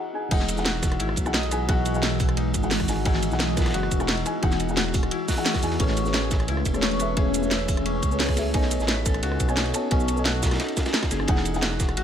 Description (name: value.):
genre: liquid drum and bass.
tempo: 175 BPM.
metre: 4/4.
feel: straight.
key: E major.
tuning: A4 = 443 Hz.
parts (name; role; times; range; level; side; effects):
felt-muted upright piano; accompaniment; 0.0-12.0 s; E3 to A5; -30 LUFS; equal; ping-pong delay.
Celtic harp; arpeggios; 0.0-12.0 s; C#4 to D#5; -32 LUFS; left 4 dB; ping-pong delay.
glassy FM pad; sustained chords; 0.3-12.0 s; E3 to D#5; -31 LUFS; left 2 dB; ensemble chorus, built-in reverb, phaser.
dark detuned saw bass; bass; 0.3-12.0 s; E1 to E2; -28 LUFS; right 1 dB; none.
crunchy breakbeat drum kit; drums; 0.3-12.0 s; hi-hat, ride cymbal, snare drum; -34 LUFS; equal; high-pass filter on cymbals, high-pass filter on hats, high-pass filter on snare, high-pass filter on room.
electronic kick drum; drums; 0.3-11.9 s; none; -25 LUFS; equal; none.
garage drum kit; drums; 0.3-12.0 s; crash cymbal, hi-hat, rim click, shaker, snare drum; -28 LUFS; right 1 dB; none.
room: light reverb, small room ambience.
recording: high-pass filter.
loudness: -21 LUFS.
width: side -9 dB against mid.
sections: 0.3-12.0 A section.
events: break 0.0-0.3; drop 0.3-12.0.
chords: 0.3 Emaj9; 5.8 Amaj9; 8.5 B13; 11.3 Emaj9.